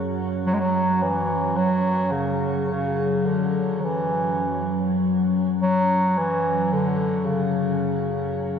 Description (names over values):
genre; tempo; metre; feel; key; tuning
dark ambient drone; 53 BPM; 4/4; straight; unclear; A4 = 440 Hz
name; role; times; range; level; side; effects
organ-like drone; drone; 0.0-8.6 s; F#2 to F#3; -24 LUFS; left 1 dB; ensemble chorus, built-in reverb
warm bass clarinet; melody; 0.5-8.6 s; C#3 to G#3; -23 LUFS; equal; shimmer reverb, analog delay
room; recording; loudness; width
wet spring reverb, RT60 2.8 s; echo-heavy mix, cassette tape; -20 LUFS; side -7 dB against mid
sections
0.0-8.6 A section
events
filter sweep on synth drone 0.0-8.6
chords
none